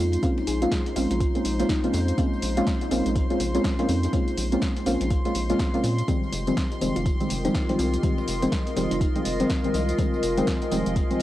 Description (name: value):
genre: deep house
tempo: 123 BPM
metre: 4/4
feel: swing 60% on 16ths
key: Bb minor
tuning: A4 = 440 Hz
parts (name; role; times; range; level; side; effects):
- thumb-piano-like synth pluck; melody; 0.0-2.4, 7.0-9.3 s; C4 to Ab4; -33 LUFS; equal; chorus, cassette tape, tape echo
- deep mellow chord stab; stabs; 0.0-11.2 s; Eb3 to F4; -26 LUFS; equal; chorus, sidechain pumping, cassette tape, tape echo
- rubbery square bass; bass; 0.0-11.0 s; F1 to Bb2; -28 LUFS; equal; transformer saturation, sidechain pumping
- warbly tape-like pad; texture; 0.1-11.2 s; Ab3 to Eb5; -32 LUFS; left 1 dB; chorus, built-in reverb, phaser, sidechain pumping, cassette tape
- warm studio violin section; texture; 0.0-11.2 s; C6; -39 LUFS; equal; sidechain pumping, cassette tape
- deep house drum kit; drums; 0.1-11.2 s; hi-hat, snare drum, tambourine; -34 LUFS; equal; overdrive, cassette tape
- congas; percussion; 0.1-11.2 s; none; -40 LUFS; left 7 dB; none
- dusty soul sampler-style drum kit; drums; 0.2-11.1 s; hi-hat, snare drum, tambourine; -44 LUFS; equal; none
- electronic kick drum; drums; 0.2-11.1 s; none; -26 LUFS; equal; overdrive, cassette tape
- warm analog pad; sustained chords; 6.1-11.2 s; F4 to Ab5; -37 LUFS; right 1 dB; chorus, sidechain pumping, cassette tape
room: moderate studio reverb, RT60 0.6 s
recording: home recording on cassette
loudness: -22 LUFS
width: side -14 dB against mid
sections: 0.0-11.2 A section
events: none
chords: 0.0 Bbm9; 6.1 Fm9